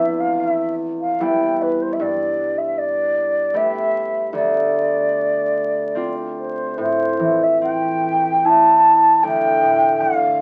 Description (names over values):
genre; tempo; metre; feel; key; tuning
celtic folk, Celtic slow air; 74 BPM; 3/4; uneven beats, rubato; D dorian; A4 = 440 Hz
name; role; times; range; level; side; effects
mellow wooden flute; melody; 0.0-10.4 s; B4 to A5; -20 LUFS; equal; none
concert harp; accompaniment; 0.0-10.4 s; D2 to G4; -23 LUFS; equal; none
room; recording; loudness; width
moderate small room reverb, RT60 0.5 s; very old 78 rpm record, vinyl crackle, nothing above 10.9 kHz; -18 LUFS; mono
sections
0.0-6.8 A section; 6.8-10.4 B section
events
none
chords
0.0 Em; 2.0 Gadd9; 4.3 Dm7; 6.8 Am; 9.2 Dm